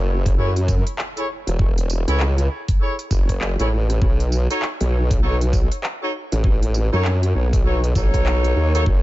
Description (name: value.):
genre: glitch hop.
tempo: 99 BPM.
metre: 4/4.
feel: swing 60% on 16ths.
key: unclear.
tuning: A4 = 438 Hz.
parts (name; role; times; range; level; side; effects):
formant-sweep wobble bass; bass; 0.0-9.0 s; E1 to F#2; -18 LUFS; equal; chorus, overdrive.
impact; sound effects; 0.1-1.6 s; none; -42 LUFS; equal; none.
electronic kick drum; drums; 0.3-9.0 s; none; -19 LUFS; equal; none.
pop drum kit; drums; 0.3-8.8 s; handclaps, hi-hat, rim click, tambourine; -30 LUFS; equal; none.
warm horn section; stabs; 0.4-8.8 s; D#4 to C#5; -27 LUFS; equal; sidechain pumping, analog delay.
room: little or no reverb.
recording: echo-heavy mix, nothing above 7.7 kHz.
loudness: -17 LUFS.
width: side -17 dB against mid.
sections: 0.0-9.0 A section.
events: impact 0.0-1.6.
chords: 0.0 F#m7; 4.0 B7.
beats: 0.38 0.98 | 1.59 2.20 2.80 3.41 | 4.01 4.62 5.23 5.83 | 6.44 7.05 7.65 8.26 | 8.86.